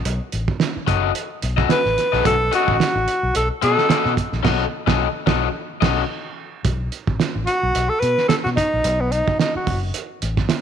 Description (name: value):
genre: funk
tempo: 109 BPM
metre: 4/4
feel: swing 56% on 16ths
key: B mixolydian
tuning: A4 = 439 Hz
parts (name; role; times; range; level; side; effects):
- vintage muted fingered electric bass; bass; 0.0-10.5 s; F#1 to B2; -24 LUFS; left 1 dB; none
- cloth-damped thuddy drum kit; drums; 0.1-10.6 s; crash cymbal, hi-hat, kick drum, snare drum; -22 LUFS; right 5 dB; none
- crunchy overdriven guitar; accompaniment; 0.9-6.0 s; C#4 to D#5; -23 LUFS; left 13 dB; none
- breathy alto saxophone; melody; 1.7-4.1, 7.5-9.8 s; B3 to B4; -20 LUFS; equal; none
room: light reverb, studio reverb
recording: 1960s-style stereo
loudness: -17 LUFS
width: side -8 dB against mid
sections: 0.0-6.6 A section; 6.6-10.6 B section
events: band accent 4.4-6.6; alto saxophone solo 6.6-10.6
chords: 0.0 B9; 6.6 B7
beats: | 0.05 0.60 1.15 1.70 | 2.25 2.80 3.35 3.90 | 4.45 5.00 5.55 6.10 | 6.65 7.20 7.75 8.30 | 8.85 9.40 9.95 10.50